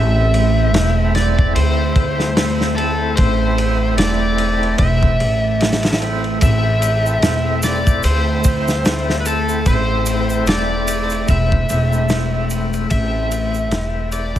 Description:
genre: trip hop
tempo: 74 BPM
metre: 4/4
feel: swing 58% on 16ths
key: A minor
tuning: A4 = 436 Hz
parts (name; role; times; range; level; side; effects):
- overdriven slide guitar; melody; 0.0-14.4 s; A4 to E5; -22 LUFS; left 1 dB; dub echo
- overdriven tonewheel organ; accompaniment; 0.0-14.4 s; A3 to E4; -24 LUFS; equal; slow rotary speaker, tremolo, vintage 12-bit sampler grit, tape echo
- warbly tape-like pad; sustained chords; 0.0-14.4 s; A3; -24 LUFS; right 1 dB; chorus, built-in reverb, vintage 12-bit sampler grit
- upright bass; bass; 0.0-14.4 s; E1 to D2; -19 LUFS; equal; tube saturation
- crunchy breakbeat drum kit; drums; 0.3-14.4 s; kick drum, ride cymbal, snare drum; -20 LUFS; equal; none
- tube shaker; percussion; 6.4-14.4 s; none; -30 LUFS; right 4 dB; none
room: studio reverb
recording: none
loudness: -14 LUFS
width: side -12 dB against mid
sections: 0.0-14.4 A section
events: fade-out 10.7-14.4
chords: 0.0 Am

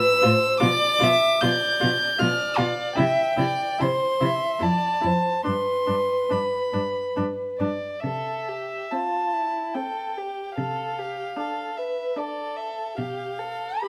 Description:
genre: classical, slow romantic movement for string quartet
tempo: 65-81 BPM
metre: 3/4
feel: rubato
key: C major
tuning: A4 = 443 Hz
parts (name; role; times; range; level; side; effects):
- warm violin; melody; 0.0-13.9 s; D5 to G6; -28 LUFS; equal; none
- dark violin; second line; 0.0-13.9 s; E4 to E5; -29 LUFS; equal; none
- dark viola; accompaniment; 0.2-13.9 s; C4 to G4; -33 LUFS; equal; none
- warm cello; bass; 0.2-13.7 s; F2 to C3; -30 LUFS; equal; none
room: light reverb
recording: none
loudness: -24 LUFS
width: mono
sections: 0.0-8.0 A section; 8.0-13.9 B section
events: none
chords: 0.0 F; 0.6 G7/B; 2.9 C; 4.6 Fmaj7; 5.4 G; 8.0 C; 10.6 Dm7/C; 13.0 G7/B

